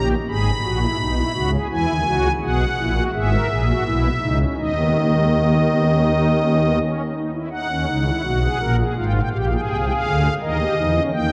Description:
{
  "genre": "classical, baroque-style 3-part fugue for pipe organ",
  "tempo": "83 BPM",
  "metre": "4/4",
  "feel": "straight",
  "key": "G# minor",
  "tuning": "A4 = 440 Hz",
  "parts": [
    { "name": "pipe organ, strings celeste", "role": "solo", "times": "0.0-11.3 s", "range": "G#1 to B5", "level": "-20 LUFS", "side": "equal", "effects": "none" }
  ],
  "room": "wet church reverb, RT60 3.9 s",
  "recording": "dark, warm production",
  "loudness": "-20 LUFS",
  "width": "mono",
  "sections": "0.0-7.5 A section; 7.5-11.3 B section",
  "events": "none",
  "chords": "0.3 G#m; 1.7 E; 3.1 C#m/G#; 4.6 D#5; 7.5 G#m; 9.0 A#7/G#; 10.4 D#7"
}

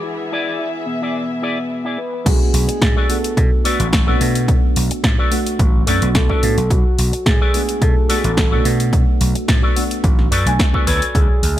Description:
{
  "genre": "nu-disco, nu disco",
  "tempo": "108 BPM",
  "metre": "4/4",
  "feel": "straight",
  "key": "B dorian",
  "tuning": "A4 = 439 Hz",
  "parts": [
    { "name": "soft octave-layered synth lead", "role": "melody", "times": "0.0-11.6 s", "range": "B3 to B4", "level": "-24 LUFS", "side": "equal", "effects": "chorus, digital delay" },
    { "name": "reed electric piano", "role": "accompaniment", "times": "0.0-10.9 s", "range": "G#3 to G#5", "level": "-24 LUFS", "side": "right 1 dB", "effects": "lush chorus" },
    { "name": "warm chamber string section", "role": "sustained chords", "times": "0.0-2.2 s", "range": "E3 to E5", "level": "-27 LUFS", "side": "left 2 dB", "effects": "sidechain pumping" },
    { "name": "electric guitar with an envelope filter", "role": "riff", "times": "0.2-11.6 s", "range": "E4 to D5", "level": "-24 LUFS", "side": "left 2 dB", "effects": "analog chorus, vintage 12-bit sampler grit" },
    { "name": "vintage slap bass", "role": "bass", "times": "2.3-11.6 s", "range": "A1 to B2", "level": "-19 LUFS", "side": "equal", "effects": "none" },
    { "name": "electronic kick drum", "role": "drums", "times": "2.3-11.3 s", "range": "none", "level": "-16 LUFS", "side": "equal", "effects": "none" },
    { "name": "house drum kit", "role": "drums", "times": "2.3-11.5 s", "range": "crash cymbal, hi-hat, snare drum", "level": "-22 LUFS", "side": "equal", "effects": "none" }
  ],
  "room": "light reverb, digital ambience",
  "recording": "bright 1980s-style digital production",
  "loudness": "-14 LUFS",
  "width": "side -13 dB against mid",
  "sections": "0.0-2.3 A section; 2.3-11.6 B section",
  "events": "drop 2.3-11.6",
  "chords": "0.0 E7; 2.3 Bm7; 10.9 Dmaj7"
}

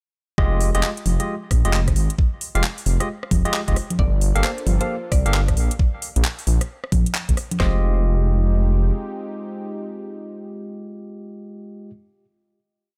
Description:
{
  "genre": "UK garage, two-step garage",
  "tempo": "133 BPM",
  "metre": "4/4",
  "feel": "swing 63% on 16ths",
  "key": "F minor",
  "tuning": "A4 = 440 Hz",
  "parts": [
    { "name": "barky tine electric piano", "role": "stabs", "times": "0.4-11.9 s", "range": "Ab3 to F5", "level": "-30 LUFS", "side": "equal", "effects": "delay" },
    { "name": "dark detuned saw bass", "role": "bass", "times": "0.4-8.9 s", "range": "F1 to C2", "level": "-22 LUFS", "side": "equal", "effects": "none" },
    { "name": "garage drum kit", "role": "drums", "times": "0.4-7.7 s", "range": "kick drum, snare drum", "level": "-22 LUFS", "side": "equal", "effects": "studio reverb" },
    { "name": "garage drum kit", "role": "drums", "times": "0.6-7.6 s", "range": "congas, handclaps, hi-hat, rim click", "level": "-28 LUFS", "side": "equal", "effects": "studio reverb" },
    { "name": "mallet-like synth pluck", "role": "melody", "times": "4.0-11.9 s", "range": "C5 to D5", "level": "-35 LUFS", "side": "equal", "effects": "chorus, delay" },
    { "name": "warm analog pad", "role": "sustained chords", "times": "4.0-11.9 s", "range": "Ab3 to A4", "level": "-38 LUFS", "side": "equal", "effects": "chorus, sidechain pumping" }
  ],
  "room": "digital ambience",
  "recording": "none",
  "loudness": "-21 LUFS",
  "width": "mono",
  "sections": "0.4-7.6 drop; 7.6-11.2 final chord",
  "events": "drop 0.4-7.6",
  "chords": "0.4 Fm9; 3.8 Gm9; 5.8 N.C.; 7.6 Fm9"
}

